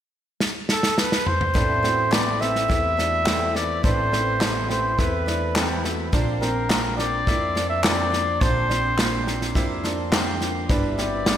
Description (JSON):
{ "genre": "indie folk with a building arrangement", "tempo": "105 BPM", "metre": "4/4", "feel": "straight", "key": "unclear", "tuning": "A4 = 440 Hz", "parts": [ { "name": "natural country drum kit", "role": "drums", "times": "0.4-11.4 s", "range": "kick drum, snare drum, toms", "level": "-24 LUFS", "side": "equal", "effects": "none" }, { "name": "mellow trumpet", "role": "melody", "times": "0.7-11.4 s", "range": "A4 to E5", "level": "-24 LUFS", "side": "equal", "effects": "slapback echo" }, { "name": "felt-muted upright piano", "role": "accompaniment", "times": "1.5-11.4 s", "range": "G1 to D5", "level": "-33 LUFS", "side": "right 4 dB", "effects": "slapback echo" }, { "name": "picked steel-string acoustic guitar", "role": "accompaniment", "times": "1.5-11.4 s", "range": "A2 to C5", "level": "-32 LUFS", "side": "left 5 dB", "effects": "slapback echo" }, { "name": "bright upright piano", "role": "arpeggios", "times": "1.5-11.4 s", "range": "Bb3 to E4", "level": "-31 LUFS", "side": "right 5 dB", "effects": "slapback echo" }, { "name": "mellow tonewheel organ", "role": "sustained chords", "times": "1.6-11.4 s", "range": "C4 to C6", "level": "-36 LUFS", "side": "equal", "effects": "none" }, { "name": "upright bass", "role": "bass", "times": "1.6-11.4 s", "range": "G1 to F2", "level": "-28 LUFS", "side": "equal", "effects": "none" }, { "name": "group handclap", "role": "percussion", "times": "2.1-11.4 s", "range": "none", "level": "-30 LUFS", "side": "left 3 dB", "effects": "slapback echo" } ], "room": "moderate lush hall reverb, RT60 1.7 s, studio reverb", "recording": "big arena sound", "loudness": "-20 LUFS", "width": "side -10 dB against mid", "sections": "0.0-1.5 A section; 1.5-11.4 B section", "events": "drum fill 0.4-1.5", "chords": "0.0 N.C.; 1.5 Amadd9; 6.1 Bbadd9; 10.7 G6" }